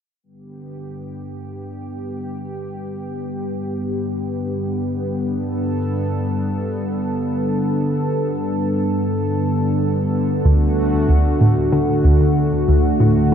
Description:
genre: ambient, sequencer-driven space music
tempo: free time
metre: none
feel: none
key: G major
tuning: A4 = 441 Hz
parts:
  - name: lush unison pad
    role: sustained chords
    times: 0.2-13.3 s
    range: D2 to A4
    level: -19 LUFS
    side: equal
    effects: chorus
  - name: hollow square pluck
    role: riff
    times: 10.4-13.3 s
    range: D2 to D3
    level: -16 LUFS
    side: equal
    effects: chorus, phaser, cassette tape, ping-pong delay
room: wet huge ambient reverb, RT60 7.4 s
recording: dreamy mix soaked in reverb, cassette tape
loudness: -17 LUFS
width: side -8 dB against mid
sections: 0.2-13.3 A section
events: fade-in on analog synth pad 0.2-13.3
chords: 0.2 G; 10.4 D

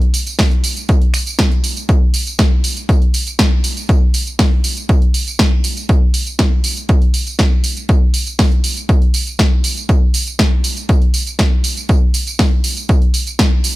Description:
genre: house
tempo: 120 BPM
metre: 4/4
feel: straight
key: none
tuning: none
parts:
  - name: punchy analog drum machine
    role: drums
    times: 0.0-13.7 s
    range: finger snaps, hi-hat, snare drum, tambourine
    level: -19 LUFS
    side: right 1 dB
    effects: sidechain pumping on hats, sidechain pumping on perc
  - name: electronic kick drum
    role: drums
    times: 0.4-13.5 s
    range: none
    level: -13 LUFS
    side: equal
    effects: none
room: little or no reverb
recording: none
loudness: -12 LUFS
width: side -18 dB against mid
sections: 0.0-13.8 A section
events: none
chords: none

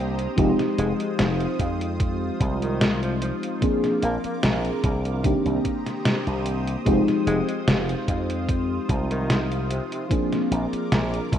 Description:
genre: vaporwave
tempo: 74 BPM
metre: 4/4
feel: straight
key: F dorian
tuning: A4 = 440 Hz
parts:
  - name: FM electric piano with soft pad layer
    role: accompaniment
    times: 0.0-11.4 s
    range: Eb3 to Ab4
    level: -25 LUFS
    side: left 1 dB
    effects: tremolo, wide subtle chorus
  - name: lush unison pad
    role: sustained chords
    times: 0.0-11.4 s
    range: F4 to Eb6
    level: -34 LUFS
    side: right 1 dB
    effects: chorus, phaser
  - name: slap bass with an envelope filter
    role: bass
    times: 0.0-11.4 s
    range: F1 to F2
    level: -26 LUFS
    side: equal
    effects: tube saturation
  - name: detuned 8-bit digital drum machine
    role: drums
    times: 0.2-11.4 s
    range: hi-hat, snare drum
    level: -26 LUFS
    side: equal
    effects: none
  - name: electronic kick drum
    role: drums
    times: 0.4-11.4 s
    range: none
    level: -25 LUFS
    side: equal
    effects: none
  - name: breathy tenor saxophone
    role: melody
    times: 0.8-10.0 s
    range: C3 to Bb3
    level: -33 LUFS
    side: equal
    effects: vintage 12-bit sampler grit, tape echo
room: moderate lush hall reverb, RT60 2.2 s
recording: rough home demo mix, cassette tape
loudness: -21 LUFS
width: side -10 dB against mid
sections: 0.0-11.4 A section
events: none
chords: 0.4 Fm7; 3.6 Bb7; 5.2 Cm7; 6.9 Fm7; 10.1 Bb7

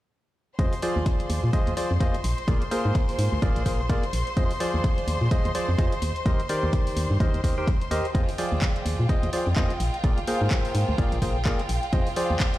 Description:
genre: piano house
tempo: 127 BPM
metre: 4/4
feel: swing 59% on 16ths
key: F dorian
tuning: A4 = 440 Hz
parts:
  - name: clear studio string section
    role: sustained chords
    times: 0.6-12.6 s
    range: F4 to C6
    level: -33 LUFS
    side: equal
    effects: sidechain pumping
  - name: percussive organ stab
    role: riff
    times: 0.6-12.6 s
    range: Eb3 to G5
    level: -28 LUFS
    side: equal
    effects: chorus, cassette tape, sidechain pumping, dub echo
  - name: organ-like FM bass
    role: bass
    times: 0.6-12.4 s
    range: Ab1 to Bb2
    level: -25 LUFS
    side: equal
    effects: sidechain pumping
  - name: electronic kick drum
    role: drums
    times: 0.6-12.5 s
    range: none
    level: -24 LUFS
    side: equal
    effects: overdrive
  - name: house drum kit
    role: drums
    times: 0.6-12.6 s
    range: handclaps, hi-hat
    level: -35 LUFS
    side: left 1 dB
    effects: overdrive
room: light reverb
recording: played on a big sound system in a bare room, stone room reverb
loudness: -22 LUFS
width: side -15 dB against mid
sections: 0.6-12.6 A section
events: none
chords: 0.6 Fm7; 2.2 Bb7; 4.4 Fm7; 6.0 Cm7/Eb; 8.1 Fm7; 9.8 Bb7; 11.9 Fm7

